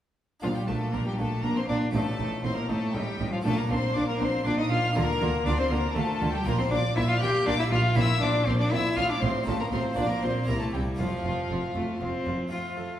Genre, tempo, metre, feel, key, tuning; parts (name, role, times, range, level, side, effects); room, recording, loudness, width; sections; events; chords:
classical, baroque-style concerto movement with solo episodes; 119 BPM; 3/4; straight; Bb major, F major from 6.5 s; A4 = 443 Hz
rich cello; melody; 0.4-13.0 s; F3 to G4; -29 LUFS; left 1 dB
rich chamber violin section; melody; 0.4-13.0 s; F5 to G6; -35 LUFS; left 3 dB
rich chamber violin section; second line; 0.4-13.0 s; F4 to G5; -33 LUFS; left 2 dB
dark chamber viola section; accompaniment; 0.4-13.0 s; C4 to A4; -36 LUFS; equal
harpsichord; accompaniment; 0.4-13.0 s; F2 to G4; -33 LUFS; equal
rich chamber cello section; bass; 0.4-12.9 s; F2 to D3; -32 LUFS; right 2 dB
rich chamber double bass section; bass; 0.4-12.3 s; F1 to D2; -32 LUFS; right 1 dB
wet recital hall reverb, RT60 1.6 s; heard from further back in the room; -24 LUFS; side -11 dB against mid
0.4-12.5 A section
0.4 Bb; 1.9 F7/A; 3.5 Bb; 5.0 Bb/D; 6.5 Bb6; 8.0 C5/Bb; 9.0 F/A; 9.5 F7/A; 10.0 Bb; 10.5 C7; 11.0 F